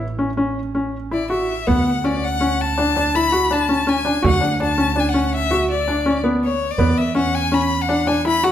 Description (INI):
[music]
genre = contemporary instrumental, chamber music in an uneven meter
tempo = 164 BPM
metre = 7/4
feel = straight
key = unclear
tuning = A4 = 439 Hz
[part]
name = felt-muted upright piano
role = arpeggios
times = 0.0-8.5 s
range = B3 to F#4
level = -19 LUFS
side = left 1 dB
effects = none
[part]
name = upright bass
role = bass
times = 0.0-8.5 s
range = A1 to E2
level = -25 LUFS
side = right 2 dB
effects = none
[part]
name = clear violin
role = melody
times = 1.1-8.5 s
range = C#5 to B5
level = -21 LUFS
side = left 4 dB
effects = none
[part]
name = frame drum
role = percussion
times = 1.7-8.5 s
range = none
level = -26 LUFS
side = right 4 dB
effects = none
[sound]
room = wet recital hall reverb, RT60 1.4 s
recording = none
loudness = -16 LUFS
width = side -10 dB against mid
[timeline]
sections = 0.0-1.7 A section; 1.7-8.5 B section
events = none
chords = 0.0 A; 1.7 Dmaj7; 6.8 E5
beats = 0.19 0.56 0.93 1.30 | 1.68 2.04 2.41 2.78 3.14 3.51 3.88 | 4.24 4.60 4.97 5.33 5.70 6.06 6.42 | 6.79 7.15 7.52 7.88 8.25